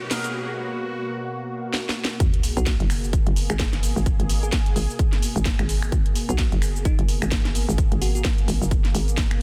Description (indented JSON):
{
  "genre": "bass house",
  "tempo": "129 BPM",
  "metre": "4/4",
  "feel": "swing 58% on 16ths",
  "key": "G# minor",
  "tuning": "A4 = 443 Hz",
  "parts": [
    { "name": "sweeping resonant pad", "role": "sustained chords", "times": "0.0-9.4 s", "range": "B2 to G#4", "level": "-35 LUFS", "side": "equal", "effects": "chorus, sidechain pumping" },
    { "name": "riser and sub drop", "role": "sound effects", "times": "0.0-4.1 s", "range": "none", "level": "-35 LUFS", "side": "equal", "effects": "none" },
    { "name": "garage drum kit", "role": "drums", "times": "0.1-9.4 s", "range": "cabasa, finger snaps, hi-hat, snare drum", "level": "-31 LUFS", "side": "equal", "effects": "none" },
    { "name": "hollow knocking FM bass", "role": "bass", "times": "2.2-9.3 s", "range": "F#1 to B1", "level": "-26 LUFS", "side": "equal", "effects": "tube saturation, sidechain pumping" },
    { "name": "electronic kick drum", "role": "drums", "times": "2.2-9.3 s", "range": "none", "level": "-24 LUFS", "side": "equal", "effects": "high-pass filter on kick" },
    { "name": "bell-like FM electric piano", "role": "melody", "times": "2.6-8.2 s", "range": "D#4 to G#4", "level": "-38 LUFS", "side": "equal", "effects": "chorus, phaser, dub echo" }
  ],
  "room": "little or no reverb",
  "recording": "dense, heavily limited modern master",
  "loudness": "-23 LUFS",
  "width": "mono",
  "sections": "0.0-2.2 A section; 2.2-9.4 B section",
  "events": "build-up 0.0-2.2; drum fill 0.0-0.3, 1.7-2.2; riser 0.0-0.3; break 0.3-2.2; drop 2.2-9.4; impact 2.2-4.1",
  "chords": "0.0 G#madd9",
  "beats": "| 0.34 0.81 1.27 1.74 | 2.20 2.67 3.13 3.60 | 4.06 4.53 4.99 5.46 | 5.92 6.39 6.85 7.32 | 7.78 8.25 8.71 9.18"
}